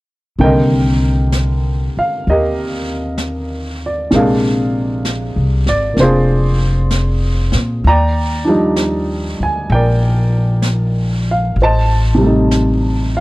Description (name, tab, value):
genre	jazz ballad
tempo	64 BPM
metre	4/4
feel	swing 68% on 8ths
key	C minor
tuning	A4 = 440 Hz
part	warm baby grand piano	accompaniment	0.4-13.2 s	C3 to Bb5	-16 LUFS	right 1 dB	none
part	upright bass	bass	0.4-13.2 s	F1 to Bb2	-15 LUFS	equal	none
part	jazz brush drum kit	drums	0.4-13.2 s	brushed snare drum, hi-hat, snare drum	-27 LUFS	equal	none
room	little or no reverb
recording	dry, close 1970s-style studio recording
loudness	-13 LUFS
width	side -20 dB against mid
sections	0.4-13.2 A section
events	none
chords	0.4 Cm9; 4.1 Bb9; 7.8 Ebmaj9; 11.6 Am7b5